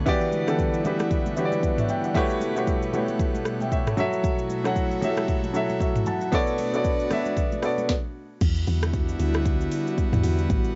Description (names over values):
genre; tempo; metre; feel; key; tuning
amapiano; 115 BPM; 4/4; swing 58% on 16ths; E dorian; A4 = 440 Hz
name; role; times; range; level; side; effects
warm grand piano; accompaniment; 0.0-7.9 s; E3 to A5; -27 LUFS; equal; none
airy breathy pad; sustained chords; 0.0-10.8 s; B2 to F#5; -32 LUFS; equal; chorus
afro-pop drum kit; drums; 0.1-10.7 s; crash cymbal, hi-hat, kick drum, rim click, shaker, snare drum, toms; -29 LUFS; equal; cassette tape
congas; percussion; 0.1-7.9 s; none; -39 LUFS; equal; none
deep log drum bass; bass; 8.4-10.8 s; A1 to E2; -27 LUFS; equal; none
room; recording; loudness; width
light reverb; home recording on cassette, nothing above 7.7 kHz; -25 LUFS; mono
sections
0.0-8.4 A section; 8.4-10.8 B section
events
stop 7.9-8.4; drop 8.4-10.8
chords
0.1 Em9; 2.2 A13; 6.3 Bm9; 8.4 Em9